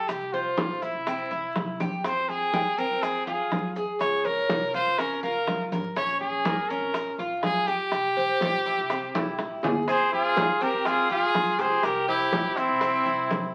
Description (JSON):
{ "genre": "latin, Cuban son and guajira", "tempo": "123 BPM", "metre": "4/4", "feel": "straight", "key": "F harmonic minor", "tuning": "A4 = 440 Hz", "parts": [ { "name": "brilliant trumpet", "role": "melody", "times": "0.0-13.5 s", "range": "E4 to Db5", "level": "-29 LUFS", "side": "equal", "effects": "none" }, { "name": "Cuban tres", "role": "arpeggios", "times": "0.0-13.5 s", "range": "C4 to Db5", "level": "-33 LUFS", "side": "equal", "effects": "none" }, { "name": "upright bass", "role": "bass", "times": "0.1-13.5 s", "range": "G1 to Bb2", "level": "-48 LUFS", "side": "equal", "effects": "none" }, { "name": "bongos", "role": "percussion", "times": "0.1-13.5 s", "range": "none", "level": "-37 LUFS", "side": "equal", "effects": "none" }, { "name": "congas", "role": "percussion", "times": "0.1-13.5 s", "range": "none", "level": "-34 LUFS", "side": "equal", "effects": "none" }, { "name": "maracas", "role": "percussion", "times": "0.1-13.5 s", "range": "none", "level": "-55 LUFS", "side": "equal", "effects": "none" }, { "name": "clear trumpet", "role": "second line", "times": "9.9-13.5 s", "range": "C4 to Ab4", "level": "-28 LUFS", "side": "equal", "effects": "none" } ], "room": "wet studio reverb, RT60 0.7 s", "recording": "very old 78 rpm record, vinyl crackle", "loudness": "-26 LUFS", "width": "mono", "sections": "0.0-9.9 A section; 9.9-13.5 A section", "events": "drum fill 1.8, 9.1-9.9", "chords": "0.1 C; 2.0 Fmadd9; 4.0 Db; 6.0 Bbm; 7.9 C7; 9.9 Fm; 11.8 C7" }